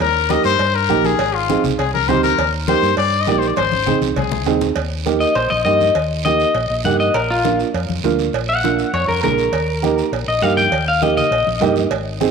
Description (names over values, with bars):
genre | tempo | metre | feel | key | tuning
latin, cumbia | 202 BPM | 4/4 | straight | Eb major | A4 = 440 Hz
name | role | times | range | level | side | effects
clear trumpet | second line | 0.0-4.6 s | F4 to Eb5 | -18 LUFS | left 10 dB | none
hollow-body short-scale fingered electric bass | bass | 0.0-12.3 s | Ab1 to G2 | -23 LUFS | equal | none
congas | percussion | 0.0-12.3 s | none | -27 LUFS | left 9 dB | none
guiro | percussion | 0.0-12.3 s | none | -32 LUFS | right 13 dB | none
dark upright piano | accompaniment | 0.3-12.3 s | Bb3 to Ab4 | -20 LUFS | right 9 dB | none
cowbell and timbales | percussion | 0.6-12.1 s | none | -26 LUFS | right 10 dB | none
electric guitar at the edge of break-up | melody | 5.2-11.7 s | F4 to G5 | -18 LUFS | left 3 dB | spring reverb, slapback echo
room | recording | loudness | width
moderate echo chamber reverb, RT60 1.5 s | 1960s-style stereo with parts hard left and right | -15 LUFS | side -6 dB against mid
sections
0.0-4.8 A section; 4.8-12.3 B section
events
trumpet solo 0.0-4.8; drum fill 3.6-4.8; clean electric guitar solo 4.8-12.3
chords
0.0 Eb; 1.2 Ab; 2.4 Eb; 3.6 Ab; 4.8 Eb; 7.1 Bb; 9.5 Eb